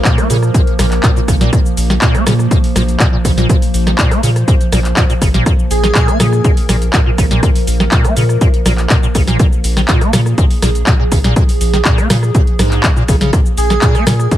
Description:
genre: acid house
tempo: 122 BPM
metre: 4/4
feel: straight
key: Bb minor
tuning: A4 = 440 Hz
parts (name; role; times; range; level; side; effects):
- warbly tape-like pad; sustained chords; 0.0-14.4 s; F3 to C5; -21 LUFS; right 3 dB; chorus, built-in reverb, phaser, sidechain pumping
- booming analog drum machine; drums; 0.0-14.4 s; handclaps, hi-hat, rim click, shaker, snare drum; -17 LUFS; equal; none
- liquid acid bass; riff; 0.1-14.4 s; Ab2 to Bb3; -18 LUFS; equal; overdrive, wide subtle chorus, vintage 12-bit sampler grit
- electronic kick drum; drums; 0.1-14.4 s; none; -12 LUFS; equal; none
- round analog bass; bass; 0.3-14.3 s; Ab1 to Bb2; -15 LUFS; equal; tube saturation, sidechain pumping
- airy dreamy lead; melody; 5.7-6.4, 13.6-14.3 s; Ab4; -18 LUFS; right 2 dB; chorus, ping-pong delay
room: digital ambience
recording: none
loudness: -10 LUFS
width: side -12 dB against mid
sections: 0.0-14.4 A section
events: none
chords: 0.0 Bb5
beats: 0.05 0.54 1.04 | 1.53 2.02 2.51 3.00 | 3.50 3.99 4.48 4.97 | 5.46 5.95 6.45 6.94 | 7.43 7.92 8.41 8.90 | 9.40 9.89 10.38 10.87 | 11.36 11.86 12.35 12.84 | 13.33 13.82 14.31

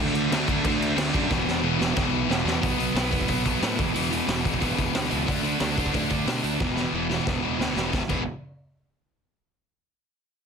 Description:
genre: punk rock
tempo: 181 BPM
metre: 4/4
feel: straight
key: unclear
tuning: A4 = 440 Hz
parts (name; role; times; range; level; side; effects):
- distorted electric guitar; riff; 0.0-8.2 s; E2 to D4; -27 LUFS; left 15 dB; distortion
- sludgy distorted guitar; riff; 0.0-8.2 s; E2 to D4; -28 LUFS; right 14 dB; overdrive
- fuzz picked electric bass; bass; 0.0-8.3 s; E1 to B2; -31 LUFS; equal; overdrive
- raw garage drum kit; drums; 0.2-8.2 s; crash cymbal, hi-hat, kick drum, snare drum; -28 LUFS; equal; none
room: light reverb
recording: dense, heavily limited modern master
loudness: -22 LUFS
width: side -6 dB against mid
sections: 0.0-2.6 A section; 2.6-7.9 B section; 7.9-9.3 C section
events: drum fill 1.3-2.6, 6.6-7.9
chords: 0.0 D5; 1.3 E5; 2.6 B5; 3.8 E5; 5.3 D5; 6.6 E5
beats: 0.30 0.63 0.96 | 1.29 1.62 1.95 2.28 | 2.62 2.95 3.28 3.61 | 3.94 4.27 4.60 4.94 | 5.27 5.60 5.93 6.26 | 6.60 6.93 7.26 7.59 | 7.93

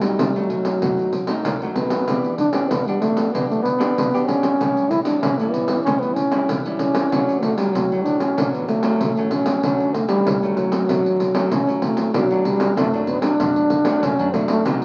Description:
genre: samba and choro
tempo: 95 BPM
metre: 4/4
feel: straight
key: D major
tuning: A4 = 442 Hz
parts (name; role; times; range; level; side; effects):
- mellow trombone; melody; 0.0-14.6 s; F#3 to E4; -22 LUFS; equal; none
- nylon-string guitar; accompaniment; 0.0-14.8 s; F#2 to G4; -28 LUFS; equal; none
- upright bass; bass; 0.0-14.8 s; A1 to F#2; -40 LUFS; equal; none
- pandeiro; percussion; 0.0-14.8 s; none; -26 LUFS; equal; none
room: moderate studio reverb, RT60 0.6 s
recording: very old 78 rpm record, vinyl crackle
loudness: -20 LUFS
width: mono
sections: 0.0-12.1 A section; 12.1-14.8 B section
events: none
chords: 0.0 B7; 2.1 Em7; 4.6 A7; 7.1 Dmaj7; 12.1 Bm7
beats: 0.20 0.83 1.46 | 2.09 2.72 3.35 3.97 | 4.60 5.23 5.86 6.49 | 7.12 7.75 8.37 9.00 | 9.63 10.26 10.89 11.52 | 12.15 12.78 13.40 14.03 | 14.66

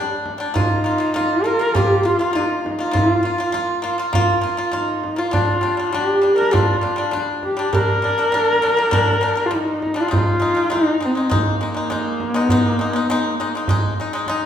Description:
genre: mongolian traditional, Mongolian folk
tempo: 100 BPM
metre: 4/4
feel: straight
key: unclear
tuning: A4 = 440 Hz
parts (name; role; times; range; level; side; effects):
- pipa; arpeggios; 0.0-14.5 s; G3 to F4; -22 LUFS; left 2 dB; none
- frame drum; percussion; 0.3-14.4 s; none; -23 LUFS; right 2 dB; none
- warm horsehead fiddle; melody; 0.5-14.3 s; Bb3 to Bb4; -19 LUFS; equal; none
room: wet recital hall reverb, RT60 1.4 s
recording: recorded in a church or concert hall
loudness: -16 LUFS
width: side -9 dB against mid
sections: 0.0-14.5 A section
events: none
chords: 0.0 G5; 0.5 Bb5; 5.3 G5; 10.1 Ab5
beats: | 0.54 1.14 1.74 2.34 | 2.94 3.54 4.14 4.74 | 5.33 5.93 6.53 7.13 | 7.72 8.32 8.92 9.52 | 10.11 10.71 11.30 11.90 | 12.49 13.09 13.68 14.28

